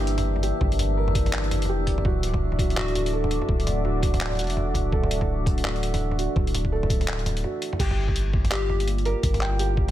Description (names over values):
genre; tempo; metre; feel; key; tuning
half-time drum and bass; 167 BPM; 4/4; swing 60% on 16ths, half-time; G dorian; A4 = 440 Hz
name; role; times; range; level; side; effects
dark analog pad; sustained chords; 0.0-9.9 s; A3 to D5; -32 LUFS; equal; chorus, phaser, sidechain pumping
felt-muted upright piano; arpeggios; 0.0-9.9 s; F#4 to G5; -32 LUFS; right 3 dB; ping-pong delay
long sustained 808-style bass; bass; 0.0-9.9 s; D1 to G1; -26 LUFS; equal; none
boom bap sampler-style drum kit; drums; 0.0-9.9 s; crash cymbal, handclaps, hi-hat, toms; -30 LUFS; equal; none
metallic inharmonic drone; texture; 0.0-7.8 s; E3 to E5; -34 LUFS; left 2 dB; chorus, built-in reverb
electronic kick drum; drums; 0.6-9.9 s; none; -25 LUFS; equal; none
plucky unison lead; melody; 2.8-3.1, 8.5-8.9 s; F#4 to G4; -33 LUFS; left 5 dB; cassette tape, dub echo
room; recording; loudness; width
digital ambience; none; -22 LUFS; side -13 dB against mid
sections
0.0-7.8 A section; 7.8-9.9 A section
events
drop 0.0-7.8, 7.8-9.9; break 7.4-7.8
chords
0.0 Gm7; 2.0 D; 7.8 Gm7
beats
0.25 | 0.61 0.97 1.33 1.69 | 2.05 2.41 2.77 3.13 | 3.49 3.85 4.21 4.57 | 4.92 5.28 5.64 6.00 | 6.36 6.72 7.08 7.44 | 7.80 8.16 8.52 8.88 | 9.24 9.60